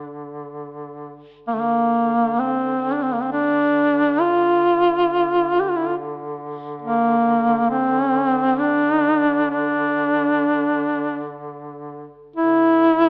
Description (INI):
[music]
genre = caucasian folk, Caucasian lament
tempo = 62-69 BPM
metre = 3/4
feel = rubato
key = D minor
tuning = A4 = 439 Hz
[part]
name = warm duduk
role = melody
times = 0.0-13.1 s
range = A3 to G4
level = -19 LUFS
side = equal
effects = none
[part]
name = mellow duduk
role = drone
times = 0.0-13.1 s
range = D3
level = -34 LUFS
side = equal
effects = none
[sound]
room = wet recital hall reverb, RT60 1.3 s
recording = AM radio sound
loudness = -19 LUFS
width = mono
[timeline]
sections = 0.0-12.3 A section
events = none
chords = none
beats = 0.53 | 1.47 2.38 3.29 | 4.19 5.07 5.95 | 6.82 7.71 8.61 | 9.52 10.43 11.38 | 12.34